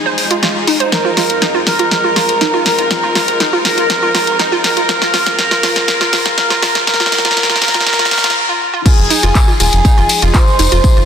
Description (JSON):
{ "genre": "progressive house", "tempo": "121 BPM", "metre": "4/4", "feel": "straight", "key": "unclear", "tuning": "A4 = 439 Hz", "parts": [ { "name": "bright studio string section", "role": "sustained chords", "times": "0.0-11.1 s", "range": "F2 to Bb4", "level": "-23 LUFS", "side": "left 1 dB", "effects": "sidechain pumping, low-pass filter" }, { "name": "glassy wavetable pluck", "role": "arpeggios", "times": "0.1-11.0 s", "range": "Eb4 to C5", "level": "-18 LUFS", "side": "right 3 dB", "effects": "chorus, cassette tape, sidechain pumping, ping-pong delay" }, { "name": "house drum kit", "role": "drums", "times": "0.2-10.9 s", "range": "crash cymbal, handclaps, hi-hat, ride cymbal, snare drum", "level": "-15 LUFS", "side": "equal", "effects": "small room ambience, sidechain pumping on hats, sidechain pumping on cymbals" }, { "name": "expressive portamento lead", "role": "melody", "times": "0.9-11.0 s", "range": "Ab4 to C5", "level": "-15 LUFS", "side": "equal", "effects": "lush chorus, ping-pong delay" }, { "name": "electronic kick drum", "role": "drums", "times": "8.9-10.9 s", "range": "none", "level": "-10 LUFS", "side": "equal", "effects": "small room ambience" }, { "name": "tambourine", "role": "percussion", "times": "8.9-11.1 s", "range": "none", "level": "-20 LUFS", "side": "left 4 dB", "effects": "none" }, { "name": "round analog bass", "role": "bass", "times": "9.0-11.0 s", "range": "Eb1 to F1", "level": "-14 LUFS", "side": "equal", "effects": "sidechain pumping" } ], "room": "moderate lush hall reverb, RT60 2.0 s", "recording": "dense, heavily limited modern master, high-pass filter", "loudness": "-10 LUFS", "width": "side -8 dB against mid", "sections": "0.0-8.9 A section; 8.9-11.1 B section", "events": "build-up 0.0-8.9; drum fill 0.0-8.4; filter sweep on synth arpeggio sound 0.0-8.9; filter sweep 0.0-8.9; break 8.4-8.9; drop 8.9-11.1", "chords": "0.0 Fm7; 0.9 Eb5/F; 8.9 Fm7", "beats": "0.43 | 0.92 1.42 1.92 2.41 | 2.91 3.40 3.90 4.39 | 4.89 5.39 5.88 6.38 | 6.87 7.37 7.87 8.36 | 8.86 9.35 9.85 10.34 | 10.84" }